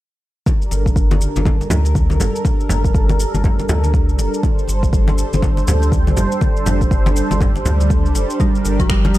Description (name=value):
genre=afro house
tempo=121 BPM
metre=4/4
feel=swing 60% on 16ths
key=G minor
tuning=A4 = 438 Hz
part: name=warm analog pad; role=sustained chords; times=0.5-9.2 s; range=G3 to C5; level=-22 LUFS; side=right 1 dB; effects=chorus, sidechain pumping
part: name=electronic kick drum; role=drums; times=0.5-9.0 s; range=none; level=-17 LUFS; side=equal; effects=none
part: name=electronic shaker and finger snaps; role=drums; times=0.5-9.2 s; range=none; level=-30 LUFS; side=left 2 dB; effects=none
part: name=congas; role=percussion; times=0.5-9.1 s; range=none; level=-22 LUFS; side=left 1 dB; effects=none
part: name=warm sub bass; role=bass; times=0.7-9.2 s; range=F1 to D2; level=-18 LUFS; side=equal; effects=sidechain pumping
part: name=kalimba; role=arpeggios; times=8.4-9.2 s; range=F3 to G3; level=-19 LUFS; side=right 2 dB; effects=vintage 12-bit sampler grit, sidechain pumping, digital delay
room=digital ambience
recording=dark, warm production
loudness=-14 LUFS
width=side -16 dB against mid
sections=0.5-9.2 A section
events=filter sweep on sub bass 0.5-9.2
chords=0.5 Gm